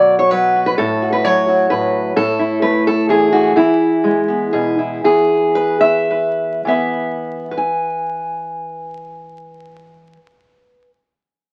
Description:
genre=folk, solo fingerstyle acoustic guitar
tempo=103-131 BPM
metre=3/4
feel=rubato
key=E major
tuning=A4 = 439 Hz
part: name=fingerpicked steel-string acoustic guitar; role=solo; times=0.0-11.0 s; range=A2 to G#5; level=-16 LUFS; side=equal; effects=none
room=moderate studio ambience, RT60 0.5 s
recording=very old 78 rpm record, vinyl crackle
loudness=-16 LUFS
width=mono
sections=0.0-5.0 A section; 5.0-6.6 B section; 6.6-10.1 C section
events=slowing down 3.6-6.6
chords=0.0 B5; 0.8 F#m/A; 2.2 A5; 3.6 E

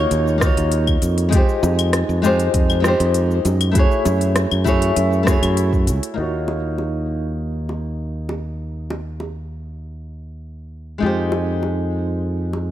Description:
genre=sunset chillout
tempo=99 BPM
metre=4/4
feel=straight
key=Eb dorian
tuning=A4 = 440 Hz
part: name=flamenco guitar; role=accompaniment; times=0.0-12.7 s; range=Ab3 to Db5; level=-21 LUFS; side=left 1 dB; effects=auto-pan, low-pass filter, ping-pong delay
part: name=modern bright fingered electric bass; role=bass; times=0.0-12.7 s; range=Db2 to Gb2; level=-21 LUFS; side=right 1 dB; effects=tube saturation
part: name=deep house drum kit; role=drums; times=0.1-6.1 s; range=cabasa, claves, hi-hat, rim click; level=-24 LUFS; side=left 2 dB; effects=none
part: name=electronic kick drum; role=drums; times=0.4-5.8 s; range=none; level=-18 LUFS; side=equal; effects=none
part: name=bongos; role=percussion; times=1.6-12.7 s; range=none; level=-28 LUFS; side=equal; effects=none
room=light reverb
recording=none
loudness=-16 LUFS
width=side -12 dB against mid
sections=0.0-6.2 A section; 6.2-12.7 B section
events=filter sweep on nylon-string guitar 6.2-12.7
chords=0.0 Ebm9; 1.3 Fm9; 3.8 Gbm9; 6.2 Ebm9; 11.0 Fm9

